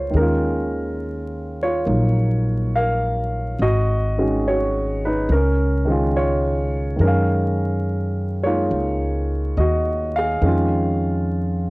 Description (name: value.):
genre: jazz ballad.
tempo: 70 BPM.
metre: 4/4.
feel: swing 68% on 8ths.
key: Eb minor.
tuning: A4 = 441 Hz.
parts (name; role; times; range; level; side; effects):
warm grand piano; accompaniment; 0.0-11.7 s; Eb3 to F5; -21 LUFS; equal; none.
upright bass; bass; 0.0-11.7 s; Ab1 to Gb2; -21 LUFS; equal; none.
room: light reverb.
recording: home recording on cassette, vinyl crackle.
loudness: -18 LUFS.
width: side -23 dB against mid.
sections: 0.1-11.7 A section.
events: none.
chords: 0.1 Ebm9; 3.6 Ab7sus4; 5.3 Dbadd9; 7.0 Gb69; 10.4 Dbadd9/F.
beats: | 0.14 1.00 1.86 2.72 | 3.58 4.43 5.29 6.15 | 7.00 7.86 8.71 9.57 | 10.43 11.28.